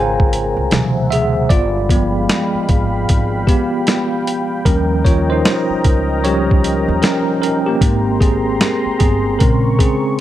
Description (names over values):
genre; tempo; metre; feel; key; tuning
lo-fi hip hop; 76 BPM; 4/4; swing 63% on 16ths; unclear; A4 = 440 Hz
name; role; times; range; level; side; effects
bell-like tine electric piano; accompaniment; 0.0-10.2 s; B2 to Ab5; -17 LUFS; right 1 dB; fast stereo tremolo, cassette tape, low-pass filter
dark analog pad; sustained chords; 0.0-10.2 s; Ab3 to Db6; -22 LUFS; left 2 dB; chorus, low-pass filter
upright bass; bass; 0.0-9.8 s; G1 to Eb2; -20 LUFS; equal; none
boom bap sampler-style drum kit; drums; 0.2-10.0 s; hi-hat, kick drum, snare drum; -15 LUFS; equal; none
room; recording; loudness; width
light reverb, digital ambience; none; -13 LUFS; side -13 dB against mid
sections
0.0-10.2 A section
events
tine electric piano solo 0.0-10.2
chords
0.0 Bbm9; 0.7 D13; 1.5 G7b9; 4.7 Eb7; 7.8 Abmaj9; 9.4 Bbm9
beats
0.71 | 1.50 2.29 3.08 3.87 | 4.66 5.45 6.24 7.03 | 7.82 8.61 9.40 10.19